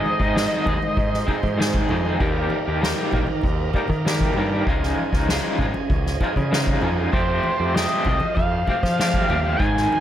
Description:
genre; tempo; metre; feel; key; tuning
psychedelic rock; 97 BPM; 4/4; straight; unclear; A4 = 440 Hz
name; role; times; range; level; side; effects
overdriven synth lead; melody; 0.0-1.9, 7.1-10.0 s; C5 to Ab5; -24 LUFS; equal; chorus, slapback echo
bright tonewheel organ; sustained chords; 0.0-10.0 s; Eb4 to C6; -34 LUFS; right 4 dB; fast rotary speaker
electric guitar through a small old amp; riff; 0.0-10.0 s; Ab2 to Ab4; -24 LUFS; equal; tremolo
soft-mallet drum kit; drums; 0.0-10.0 s; kick drum, ride cymbal, snare drum; -24 LUFS; equal; none
congas; percussion; 0.1-10.0 s; none; -34 LUFS; left 2 dB; none
growling picked electric bass; bass; 0.2-9.9 s; Ab1 to F3; -25 LUFS; equal; overdrive
room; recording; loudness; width
small room ambience; none; -19 LUFS; side -11 dB against mid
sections
0.0-10.0 A section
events
none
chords
0.0 Ab; 2.2 Eb; 4.7 Dbadd9; 7.1 Fadd9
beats
0.35 0.97 1.58 | 2.20 2.82 3.43 4.05 | 4.67 5.28 5.90 6.52 | 7.13 7.75 8.37 8.98 | 9.60

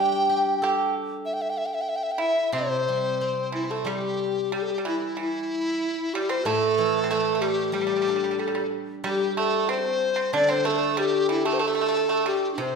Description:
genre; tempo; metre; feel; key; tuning
chinese traditional, Chinese chamber ensemble; 93 BPM; 2/4; rubato; unclear; A4 = 438 Hz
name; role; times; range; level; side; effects
mellow hollow large dizi; melody; 0.0-12.8 s; D4 to G5; -25 LUFS; left 1 dB; none
mellow low xiao; second line; 0.0-12.8 s; C4 to A4; -30 LUFS; left 3 dB; none
pipa; second line; 0.0-12.8 s; C3 to G4; -28 LUFS; right 4 dB; none
steel-string zither; accompaniment; 0.0-12.8 s; A2 to A4; -31 LUFS; equal; none
room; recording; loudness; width
wet recital hall reverb, RT60 1.5 s; recorded in a church or concert hall; -22 LUFS; side -5 dB against mid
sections
0.0-3.9 A section; 3.9-12.8 B section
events
none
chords
none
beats
0.62 | 1.26 1.90 | 2.54 3.21 | 3.88 4.54 | 5.19 5.83 | 6.47 7.10 | 7.74 8.39 | 9.05 9.70 | 10.34 10.98 | 11.62 12.27

